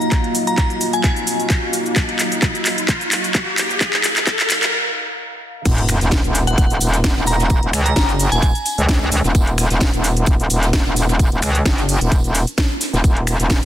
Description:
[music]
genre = bass house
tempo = 130 BPM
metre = 4/4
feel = swing 54% on 16ths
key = Eb minor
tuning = A4 = 445 Hz
[part]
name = dark analog pad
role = sustained chords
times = 0.0-13.7 s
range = Bb3 to Eb5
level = -27 LUFS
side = equal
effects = chorus, sidechain pumping
[part]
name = house drum kit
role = drums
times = 0.0-13.7 s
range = crash cymbal, finger snaps, handclaps, hi-hat, shaker, snare drum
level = -20 LUFS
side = equal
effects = overdrive
[part]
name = riser and sub drop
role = sound effects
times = 0.9-7.5 s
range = none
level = -26 LUFS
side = equal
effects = none
[part]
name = ethereal airy pad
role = texture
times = 0.0-4.7 s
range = Gb3 to Bb5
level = -28 LUFS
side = right 1 dB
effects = ensemble chorus, built-in reverb, tremolo, sidechain pumping
[part]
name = electronic kick drum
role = drums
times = 0.1-13.6 s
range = none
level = -17 LUFS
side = equal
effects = none
[part]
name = glassy synth bell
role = melody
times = 0.5-1.1, 6.5-8.5 s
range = Gb5 to Bb5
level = -24 LUFS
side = equal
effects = chorus, phaser, tape echo
[part]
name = metallic wobble bass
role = bass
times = 5.7-13.7 s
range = Eb1 to Db2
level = -17 LUFS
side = equal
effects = chorus, tube saturation, sidechain pumping
[part]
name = soft brush drum kit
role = drums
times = 5.7-13.6 s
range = hi-hat, snare drum, tambourine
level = -31 LUFS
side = right 3 dB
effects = high-pass filter on hats, high-pass filter on snare, high-pass filter on perc, high-pass filter on room
[sound]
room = light reverb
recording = dense, heavily limited modern master, high-pass filter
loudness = -15 LUFS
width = side -12 dB against mid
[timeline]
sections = 0.0-5.7 A section; 5.7-13.7 B section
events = build-up 0.0-5.7; drum fill 0.0-4.7; filter sweep 0.0-5.7; riser 0.9-4.7; break 4.7-5.7; drop 5.7-13.7; impact 5.7-7.5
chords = 0.0 Ebmadd9

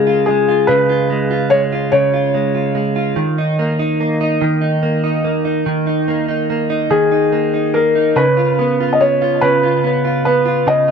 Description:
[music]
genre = pop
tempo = 48 BPM (dotted quarters)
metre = 6/8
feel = straight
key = unclear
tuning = A4 = 440 Hz
[part]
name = felt-muted upright piano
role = melody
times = 0.0-2.8, 6.9-10.9 s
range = Ab4 to Eb5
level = -14 LUFS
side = left 2 dB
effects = tape echo
[part]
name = direct-recorded clean electric guitar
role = accompaniment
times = 0.0-10.9 s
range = Db3 to F4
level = -16 LUFS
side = right 2 dB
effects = double-tracked left and right
[sound]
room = light reverb, small room reverb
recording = none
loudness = -13 LUFS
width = side -6 dB against mid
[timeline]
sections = 0.0-10.9 A section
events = none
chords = 0.0 Db; 3.2 Eb5; 8.2 Db7

